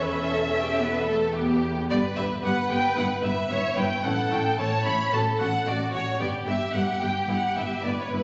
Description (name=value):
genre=quick classical-period movement for string orchestra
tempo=112 BPM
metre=4/4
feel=rubato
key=unclear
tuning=A4 = 440 Hz
part: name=rich studio violin section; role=melody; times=0.0-8.2 s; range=F#4 to C#5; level=-33 LUFS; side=equal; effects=none
part: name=rich studio violin section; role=second line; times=0.0-8.2 s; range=B4 to B5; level=-30 LUFS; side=equal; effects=none
part: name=rich studio viola section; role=accompaniment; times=0.0-8.2 s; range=A3 to A4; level=-31 LUFS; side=equal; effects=none
part: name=rich studio cello section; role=bass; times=0.0-8.2 s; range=E2 to A2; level=-34 LUFS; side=equal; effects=none
part: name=warm studio double bass section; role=bass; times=0.0-8.2 s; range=E1 to A1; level=-37 LUFS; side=equal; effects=none
room=wet recital hall reverb, RT60 1.5 s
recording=nothing above 8.0 kHz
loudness=-25 LUFS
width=mono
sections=0.0-8.2 A section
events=none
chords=0.0 Em; 1.9 G; 3.0 Em/G; 4.0 A; 5.1 F#m/A; 6.2 G; 7.3 Em/G